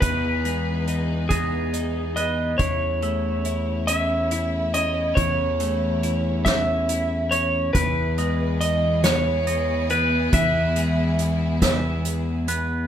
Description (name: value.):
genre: post-rock.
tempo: 46 BPM (dotted quarters).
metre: 6/8.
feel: straight.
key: E major.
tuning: A4 = 437 Hz.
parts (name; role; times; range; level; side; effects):
clean lap steel guitar; melody; 0.0-12.0 s; G#4 to E5; -24 LUFS; right 1 dB; none.
rich symphonic string section; sustained chords; 0.0-12.9 s; E3 to G#4; -33 LUFS; right 1 dB; none.
twangy electric guitar; arpeggios; 0.0-12.9 s; E4 to E5; -34 LUFS; right 4 dB; none.
twelve-string electric guitar; arpeggios; 0.0-12.9 s; E3 to E4; -28 LUFS; left 4 dB; none.
growling fingered electric bass; bass; 0.0-12.9 s; E2; -25 LUFS; equal; overdrive.
soft-mallet drum kit; drums; 0.0-12.7 s; hi-hat, kick drum, snare drum; -24 LUFS; equal; none.
room: moderate stone room reverb, RT60 1.0 s.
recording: band playing live in one room.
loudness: -20 LUFS.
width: side -9 dB against mid.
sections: 0.0-12.9 A section.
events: none.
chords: 0.0 Emaj7; 2.6 A/E; 7.8 Emaj7.